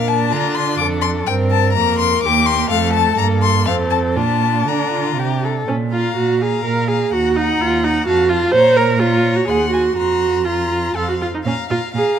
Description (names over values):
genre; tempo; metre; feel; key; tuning
quick classical-period movement for string quartet; 124 BPM; 3/4; rubato; Bb major, Bb minor from 5.7 s; A4 = 440 Hz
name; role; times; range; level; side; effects
warm violin; melody; 0.0-12.2 s; F5 to D6; -21 LUFS; left 11 dB; none
dark violin; second line; 0.0-12.2 s; D4 to Bb5; -24 LUFS; left 4 dB; none
warm viola; accompaniment; 0.0-12.2 s; A3 to C5; -18 LUFS; right 3 dB; none
rich cello; bass; 0.0-12.0 s; Eb2 to D3; -20 LUFS; right 4 dB; none
room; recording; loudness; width
light reverb; close, detailed microphones; -14 LUFS; side -8 dB against mid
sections
0.0-5.7 A section; 5.7-12.2 B section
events
none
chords
0.0 Bb; 0.8 F; 1.3 Gm; 2.2 Cm7/Eb; 2.7 F; 3.2 Gmadd9; 3.7 F; 4.2 Bb; 5.7 Bb5; 7.1 Ebm; 8.1 F; 8.6 Bbm; 9.5 Cdim/Eb; 10.0 Fsus4; 11.0 F5; 11.5 Bb5